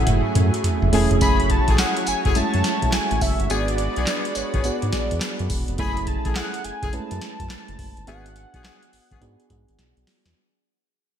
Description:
R&B, new jack swing; 105 BPM; 4/4; swing 64% on 16ths; F# minor; A4 = 440 Hz
wide unison lead; melody; 0.0-9.7 s; C#5 to B5; -28 LUFS; equal; slapback echo, ping-pong delay
soft electric-piano-like synth keys; accompaniment; 0.0-10.4 s; G#3 to B4; -27 LUFS; right 3 dB; chorus, slapback echo
lush unison pad; sustained chords; 0.0-5.8 s; F#3 to C#5; -29 LUFS; right 1 dB; chorus
round analog bass; bass; 0.0-10.3 s; E1 to G#2; -24 LUFS; equal
booming analog drum machine; drums; 0.1-10.4 s; handclaps, hi-hat, kick drum, snare drum, tambourine, toms; -24 LUFS; equal
clear horn section; stabs; 0.9-9.2 s; A3 to G#4; -31 LUFS; left 6 dB; slapback echo
light reverb, digital ambience; -19 LUFS; side -9 dB against mid
0.0-1.2 A section; 1.2-10.4 B section
drum fill 0.0-1.2, 9.8-10.4; fade-out 1.2-10.4
0.0 F#m9; 3.5 G#m7b5; 5.8 F#m9; 8.1 G#m7b5
0.07 0.64 | 1.21 1.79 2.36 2.93 | 3.50 4.07 4.64 5.21 | 5.79 6.36 6.93 7.50 | 8.07 8.64 9.21 9.79

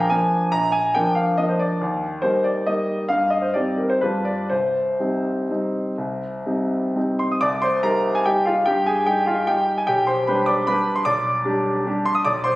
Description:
classical, piano waltz; 117-159 BPM; 3/4; rubato; C minor; A4 = 438 Hz
clear concert grand piano; solo; 0.0-12.6 s; Bb1 to Eb6; -18 LUFS; equal
moderate recital hall reverb, RT60 1.3 s; recorded on a phone in the room, studio reverb; -19 LUFS; side -18 dB against mid
0.0-7.4 A section; 7.4-12.6 B section
0.0 Bb7; 1.8 Eb; 3.1 Cm/G; 4.0 G7; 4.5 Cm; 9.9 G/B
0.11 | 0.53 0.94 1.38 | 1.81 2.23 2.67 | 3.09 3.54 4.02 | 4.50 4.99 5.49 | 5.99 6.46 6.96 | 7.43 7.85 8.27 | 8.68 9.07 9.48 | 9.88 10.28 10.68 | 11.05 11.45 11.86 | 12.26

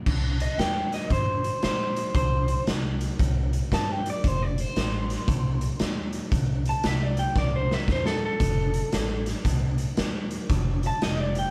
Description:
electric blues shuffle; 115 BPM; 4/4; swing 64% on 8ths; A4 = 440 Hz
upright bass; bass; 0.1-11.4 s; F1 to Bb2; -30 LUFS; equal
raw garage drum kit; drums; 0.1-11.4 s; crash cymbal, hi-hat, kick drum, snare drum; -29 LUFS; equal
electric guitar through a small old amp; second line; 0.4-11.5 s; A4 to A5; -32 LUFS; equal
light reverb; band playing live in one room; -26 LUFS; mono
0.1-11.5 A section
clean electric guitar solo 0.1-11.5; drum fill 7.4-8.4
0.1 C5; 4.2 F7; 6.3 C; 8.4 F7
| 0.08 0.60 1.12 1.64 | 2.16 2.68 3.20 3.72 | 4.24 4.76 5.29 5.81 | 6.33 6.85 7.37 7.89 | 8.41 8.94 9.46 9.98 | 10.50 11.02

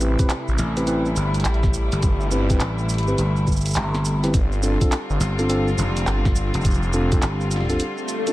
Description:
glitch hop; 104 BPM; 4/4; swing 64% on 16ths; A minor; A4 = 442 Hz
warm studio string section; sustained chords; 0.0-8.3 s; C3 to F4; -28 LUFS; left 1 dB; vintage 12-bit sampler grit, sidechain pumping
mellow tine electric piano; stabs; 0.0-8.3 s; C4 to B4; -26 LUFS; equal; sidechain pumping, tape echo
phased detuned saw bass; bass; 0.0-7.2 s; F1 to A1; -22 LUFS; equal; phaser
drum and bass drum kit; drums; 0.0-8.3 s; handclaps, hi-hat, shaker, snare drum; -29 LUFS; right 1 dB
electronic kick drum; drums; 0.2-7.2 s; -19 LUFS; equal; overdrive
gritty slap bass; bass; 0.6-7.8 s; F1 to A1; -22 LUFS; equal; overdrive
swell; sound effects; 8.0-8.3 s; -26 LUFS; left 3 dB
digital ambience; -18 LUFS; side -17 dB against mid
0.0-8.3 A section
break 7.8-8.3; swell 8.0-8.3
0.0 Am7; 4.3 G7sus4
0.30 0.88 1.45 | 2.03 2.61 3.18 3.76 | 4.34 4.91 5.49 6.07 | 6.64 7.22 7.80

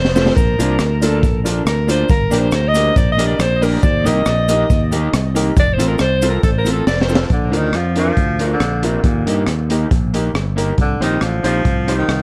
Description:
ska; 138 BPM; 4/4; straight; Bb major; A4 = 440 Hz
warm alto saxophone; melody; 0.0-7.2 s; A4 to Eb5; -22 LUFS; equal; dub echo
fingered electric bass; bass; 0.0-12.2 s; F1 to G2; -21 LUFS; equal
crunchy breakbeat drum kit; drums; 0.0-12.2 s; hi-hat, kick drum, rim click, snare drum; -20 LUFS; equal
electric guitar at the edge of break-up; accompaniment; 0.2-12.0 s; A3 to Bb4; -25 LUFS; equal
warm upright piano; stabs; 0.2-12.0 s; C4 to C5; -26 LUFS; equal
cabasa; percussion; 0.2-7.2 s; -37 LUFS; equal
breathy tenor saxophone; melody; 7.3-12.2 s; Bb2 to F3; -24 LUFS; equal; dub echo
little or no reverb; dark, warm production; -16 LUFS; mono
0.0-7.3 A section; 7.3-12.2 B section
drum fill 0.0-0.4, 6.9-7.3; alto saxophone solo 0.0-7.3
0.4 Bb; 2.1 Gm; 3.8 Eb; 5.6 F; 7.3 Bb; 9.0 Eb; 10.8 Cm
| 0.36 0.80 1.23 1.67 | 2.10 2.53 2.96 3.40 | 3.83 4.26 4.70 5.13 | 5.57 6.00 6.43 6.87 | 7.30 7.74 8.17 8.61 | 9.04 9.48 9.91 10.35 | 10.78 11.22 11.65 12.09

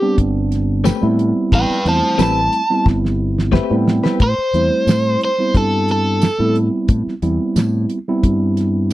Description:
straight-eighth soul blues; 89 BPM; 4/4; swing 53% on 16ths; A minor; A4 = 440 Hz
overdriven electric guitar; melody; 0.0-6.6 s; G4 to A5; -17 LUFS; equal; slapback echo
mellow tine electric piano; accompaniment; 0.0-8.9 s; G3 to G5; -19 LUFS; right 2 dB
fingered electric bass; bass; 0.2-8.9 s; G1 to A2; -18 LUFS; left 1 dB
damped 70s drum kit; drums; 0.2-8.9 s; hi-hat, kick drum, snare drum, tambourine; -16 LUFS; equal
direct-recorded clean electric guitar; stabs; 0.8-4.2 s; A3 to B4; -21 LUFS; left 6 dB; wide subtle chorus, slapback echo
little or no reverb; dry, close 1970s-style studio recording; -14 LUFS; side -16 dB against mid
0.0-4.2 A section; 4.2-8.9 B section
overdriven electric guitar solo 0.0-4.2; drum fill 2.9-4.2; tine electric piano fill 3.2-4.2
0.0 Am9
0.17 0.85 | 1.52 2.19 2.86 3.53 | 4.20 4.88 5.55 6.22 | 6.89 7.56 8.23 8.91

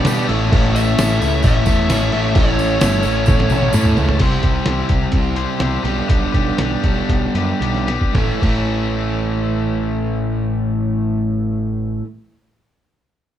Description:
classic rock; 110-131 BPM; 4/4; straight; A mixolydian; A4 = 439 Hz
tonewheel organ; sustained chords; 0.0-4.2 s; C#4 to D5; -31 LUFS; right 1 dB
crunchy overdriven guitar; riff; 0.0-12.1 s; A2 to C5; -22 LUFS; left 6 dB
crunchy overdriven guitar; riff; 0.0-12.1 s; G2 to E4; -23 LUFS; right 6 dB
growling picked electric bass; bass; 0.0-12.0 s; G1 to B2; -20 LUFS; equal; overdrive
lo-fi sampler-style drum kit; drums; 0.0-8.6 s; crash cymbal, hi-hat, kick drum, snare drum, toms; -18 LUFS; equal
tambourine; percussion; 0.1-4.0 s; -35 LUFS; right 5 dB
biting lead guitar; melody; 0.8-3.9 s; C#5 to E5; -23 LUFS; left 1 dB; overdrive
moderate studio reverb, RT60 0.8 s; band playing live in one room; -15 LUFS; side -11 dB against mid
0.0-4.2 A section; 4.2-8.1 B section; 8.1-12.5 C section
drum fill 3.3-4.2, 7.6-8.1; slowing down 4.2-8.1
0.3 A; 4.2 C; 5.8 G/B; 8.1 A
0.06 | 0.52 0.98 1.44 1.89 | 2.35 2.81 3.27 3.73 | 4.20 4.66 5.13 5.60 | 6.08 6.58 7.08 7.61 | 8.14 8.69 9.24 9.79 | 10.33 10.88 11.43 11.98

